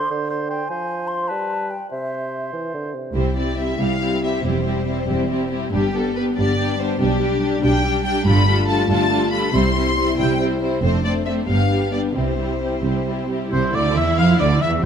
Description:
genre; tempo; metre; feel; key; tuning
classical, dramatic, fast romantic movement for symphony orchestra; 87-102 BPM (dotted quarters); 6/8; rubato; C major; A4 = 440 Hz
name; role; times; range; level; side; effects
mellow hollow concert flute; second line; 0.0-2.5 s; E5 to C6; -27 LUFS; left 2 dB; none
warm oboe; second line; 0.0-2.9, 13.5-14.8 s; B4 to F5; -26 LUFS; right 1 dB; none
dark bassoon; accompaniment; 0.0-3.2 s; C3 to G3; -28 LUFS; right 3 dB; none
rich symphonic violin section; melody; 3.1-14.7 s; G4 to C6; -25 LUFS; left 4 dB; none
warm studio violin section; second line; 3.1-14.9 s; D4 to F5; -27 LUFS; left 4 dB; none
mellow French horn section; sustained chords; 3.1-13.3 s; G3 to F4; -25 LUFS; left 4 dB; none
dark symphonic cello section; bass; 3.1-14.9 s; C2 to F3; -23 LUFS; right 2 dB; none
rich studio double bass section; bass; 3.1-14.8 s; E1 to F2; -24 LUFS; right 3 dB; none
warm symphonic viola section; accompaniment; 3.2-14.9 s; G3 to E4; -24 LUFS; right 1 dB; none
room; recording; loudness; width
moderate concert hall reverb, RT60 2.0 s; none; -18 LUFS; side -8 dB against mid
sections
0.0-3.2 A section; 3.2-13.5 B section; 13.5-14.9 B section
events
none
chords
0.0 D7sus4; 0.7 Fm; 1.3 G; 1.9 C; 4.5 C/E; 5.7 G; 7.0 G/B; 8.3 G9; 9.5 C; 10.8 F6; 11.5 G7; 12.2 C

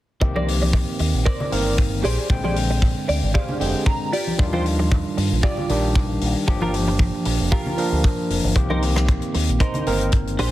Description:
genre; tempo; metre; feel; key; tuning
nu-disco, nu disco; 115 BPM; 4/4; swing 54% on 16ths; C minor; A4 = 439 Hz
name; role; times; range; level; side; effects
overdriven tine electric piano; accompaniment; 0.2-10.4 s; D3 to G5; -25 LUFS; moving between left 3 dB and right 4 dB; auto-pan, sidechain pumping, tape echo
clean electric guitar; riff; 0.2-10.5 s; D4 to Bb5; -27 LUFS; right 2 dB; analog chorus, tape echo
fingered electric bass with an envelope filter; bass; 0.2-10.5 s; F1 to G2; -23 LUFS; equal; none
kick drum; drums; 0.2-10.2 s; none; -20 LUFS; equal; none
congas; percussion; 0.4-9.8 s; none; -30 LUFS; left 1 dB; none
tight funk drum kit; drums; 0.5-10.5 s; hi-hat, rim click; -30 LUFS; left 5 dB; none
room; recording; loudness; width
light reverb; heavily compressed radio sound, multiband compression; -18 LUFS; side -15 dB against mid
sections
0.2-10.5 A section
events
clean electric guitar fill 2.8-4.4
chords
0.2 Cm7; 2.0 Bb13; 4.1 Ebmaj9; 6.5 Gm7; 8.6 Cm7

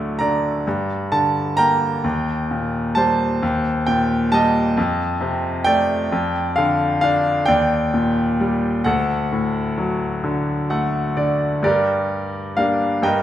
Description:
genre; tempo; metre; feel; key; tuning
classical, lyrical solo piano; 44 BPM (dotted quarters); 6/8; rubato; G minor; A4 = 440 Hz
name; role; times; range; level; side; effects
bright concert grand piano; solo; 0.0-13.2 s; D2 to D6; -17 LUFS; equal; none
room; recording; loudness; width
moderate recital hall reverb, RT60 1.5 s; minimal, uncompressed stereo recording; -17 LUFS; side -11 dB against mid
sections
0.0-11.6 A section; 11.6-13.2 B section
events
grand piano fill 10.2-11.6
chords
0.0 D; 0.7 Gm; 2.0 Cm7/Eb; 4.8 F7; 6.1 Dmadd11/F; 7.5 Ebmaj7; 8.9 D; 11.6 Gm

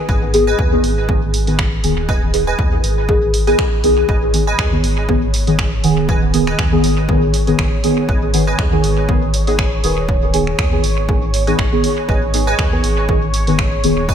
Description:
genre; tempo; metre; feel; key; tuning
dub techno; 120 BPM; 4/4; swing 54% on 16ths; G# minor; A4 = 440 Hz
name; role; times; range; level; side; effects
deep mellow chord stab; stabs; 0.0-14.1 s; D#3 to G#4; -17 LUFS; equal; chorus, phaser, sidechain pumping, dub echo
wavetable chord stab; riff; 0.1-14.1 s; B4 to G#5; -26 LUFS; right 3 dB; ensemble chorus, sidechain pumping, dub echo
round analog bass; bass; 0.1-14.1 s; D#1 to D#2; -20 LUFS; equal; sidechain pumping
electronic kick drum; drums; 0.1-14.1 s; none; -19 LUFS; equal; none
punchy analog drum machine; drums; 0.3-13.9 s; finger snaps, hi-hat; -24 LUFS; right 2 dB; dub echo
bubbling stepped-filter texture; texture; 4.1-14.1 s; C#5; -26 LUFS; right 2 dB; chorus, built-in reverb, sidechain pumping
room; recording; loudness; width
moderate church reverb, RT60 3.1 s; dreamy mix soaked in reverb; -13 LUFS; side -8 dB against mid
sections
0.0-4.1 A section; 4.1-14.1 A section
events
none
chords
0.0 G#m

